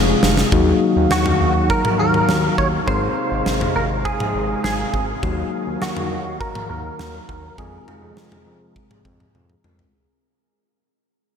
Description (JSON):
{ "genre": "synth-pop", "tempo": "102 BPM", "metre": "4/4", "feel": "straight", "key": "Eb dorian", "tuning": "A4 = 440 Hz", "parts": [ { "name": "mellow tine electric piano", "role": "accompaniment", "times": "0.0-9.9 s", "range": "Gb3 to Bb4", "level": "-24 LUFS", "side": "left 5 dB", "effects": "low-pass filter" }, { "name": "warm analog pad", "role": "sustained chords", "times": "0.0-9.9 s", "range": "C3 to F5", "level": "-24 LUFS", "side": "equal", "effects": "chorus, low-pass filter" }, { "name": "smooth synth bass", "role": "bass", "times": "0.0-9.8 s", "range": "F1 to F2", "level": "-24 LUFS", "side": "equal", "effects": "none" }, { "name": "gated 80s drum kit", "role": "drums", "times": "0.2-9.9 s", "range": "kick drum, snare drum, toms", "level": "-23 LUFS", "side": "equal", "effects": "none" }, { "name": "direct-recorded clean electric guitar", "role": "melody", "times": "1.1-9.3 s", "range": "Gb4 to Db5", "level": "-23 LUFS", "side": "right 1 dB", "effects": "ensemble chorus, low-pass filter, analog delay" } ], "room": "wet huge ambient reverb, RT60 8.6 s", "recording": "dreamy mix soaked in reverb", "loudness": "-17 LUFS", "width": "side -7 dB against mid", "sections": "0.5-9.9 A section", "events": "drum fill 0.0-0.5, 9.3-9.9; fade-out 0.5-9.9; filter sweep 0.5-9.9", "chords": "0.0 Fm; 0.5 Ebmadd9; 2.9 Ab6; 5.2 Ebmadd9; 7.6 Fm" }